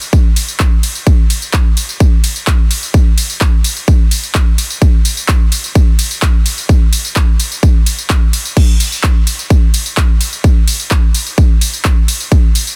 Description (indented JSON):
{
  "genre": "EDM",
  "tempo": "128 BPM",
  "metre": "4/4",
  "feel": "straight",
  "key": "none",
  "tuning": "none",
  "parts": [
    { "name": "big-room dance drum kit", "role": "drums", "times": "0.0-12.8 s", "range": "crash cymbal, handclaps, hi-hat, ride cymbal, tambourine", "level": "-20 LUFS", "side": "equal", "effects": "none" },
    { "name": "electronic kick drum", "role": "drums", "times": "0.1-12.4 s", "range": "none", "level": "-12 LUFS", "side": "equal", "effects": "none" }
  ],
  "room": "little or no reverb",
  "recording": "dense, heavily limited modern master",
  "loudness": "-12 LUFS",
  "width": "mono",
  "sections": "0.0-12.8 A section",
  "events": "none",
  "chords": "none",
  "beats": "0.13 0.60 | 1.07 1.54 2.00 2.47 | 2.94 3.41 3.88 4.35 | 4.82 5.29 5.75 6.22 | 6.69 7.16 7.63 8.10 | 8.57 9.04 9.50 9.97 | 10.44 10.91 11.38 11.85 | 12.32"
}